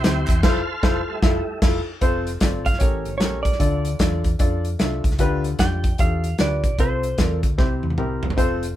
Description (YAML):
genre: uptempo gospel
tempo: 151 BPM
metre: 4/4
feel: swing 63% on 8ths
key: F major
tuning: A4 = 435 Hz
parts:
  - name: warm baby grand piano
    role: accompaniment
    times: 0.0-8.6 s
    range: A2 to E5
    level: -25 LUFS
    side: left 2 dB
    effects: none
  - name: tonewheel organ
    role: sustained chords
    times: 0.0-1.6 s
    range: G3 to F5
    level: -28 LUFS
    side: right 2 dB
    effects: slow rotary speaker, chorus vibrato
  - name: hollow-body short-scale fingered electric bass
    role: bass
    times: 0.0-8.7 s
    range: E1 to F2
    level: -25 LUFS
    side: equal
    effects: none
  - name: natural country drum kit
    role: drums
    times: 0.0-8.7 s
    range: crash cymbal, hi-hat, kick drum, snare drum, toms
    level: -20 LUFS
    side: equal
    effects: none
  - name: clean lap steel guitar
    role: melody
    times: 2.7-7.4 s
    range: C5 to G5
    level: -26 LUFS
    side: right 3 dB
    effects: none
room: light reverb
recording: band playing live in one room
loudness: -18 LUFS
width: side -13 dB against mid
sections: 0.0-2.0 A section; 2.0-8.8 B section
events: tonewheel organ solo 0.0-2.0; band accent 0.4-2.0; drum fill 7.6-8.4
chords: 0.4 Fmaj7; 2.0 F; 2.8 A7b9; 3.6 Dm; 5.2 G7/D; 6.8 F/C; 7.6 C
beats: 0.04 | 0.44 0.83 1.23 1.62 | 2.02 2.42 2.81 3.21 | 3.60 4.00 4.40 4.80 | 5.19 5.59 5.99 6.39 | 6.78 7.18 7.58 7.97 | 8.37